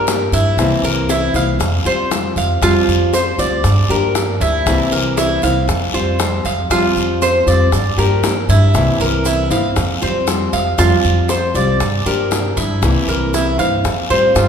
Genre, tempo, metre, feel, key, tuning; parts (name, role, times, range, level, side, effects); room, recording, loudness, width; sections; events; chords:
latin, Cuban son and guajira; 118 BPM; 4/4; straight; A4 = 439 Hz
nylon-string guitar; accompaniment; 0.0-14.5 s; C3 to G4; -20 LUFS; left 3 dB
Cuban tres; arpeggios; 0.0-14.5 s; E4 to F5; -18 LUFS; right 3 dB
upright bass; bass; 0.0-14.5 s; C2 to A2; -18 LUFS; equal
bongos; percussion; 0.1-14.5 s; -24 LUFS; left 4 dB
guiro; percussion; 0.1-14.5 s; -27 LUFS; left 5 dB
maracas; percussion; 0.1-14.5 s; -32 LUFS; right 7 dB
breathy trumpet; melody; 14.4-14.5 s; F4; -21 LUFS; right 6 dB
wet recital hall reverb, RT60 1.6 s; recorded in a church or concert hall; -13 LUFS; side -7 dB against mid
0.0-14.5 A section
0.0 Gm7; 0.6 C7; 1.6 Fsus2; 3.6 Gm7; 4.7 C7; 5.7 Fsus2; 7.7 Gm7; 8.7 C7; 9.8 Fsus2; 11.8 Gm7; 12.8 C7; 13.8 Fsus2